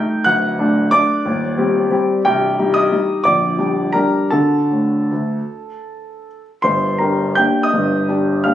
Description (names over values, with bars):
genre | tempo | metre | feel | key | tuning
classical, piano waltz | 150-198 BPM | 3/4 | rubato | G minor | A4 = 438 Hz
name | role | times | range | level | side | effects
warm grand piano | solo | 0.0-8.5 s | Bb0 to G6 | -14 LUFS | equal | none
room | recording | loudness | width
moderate large studio reverb, RT60 0.8 s | recorded on a phone in the room, studio ambience, compression | -14 LUFS | side -12 dB against mid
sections
0.0-6.6 A section; 6.6-8.5 B section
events
none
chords
0.3 D; 1.2 Cm/Eb; 2.2 Cm; 3.2 Gm/Bb; 4.3 D; 6.6 Gm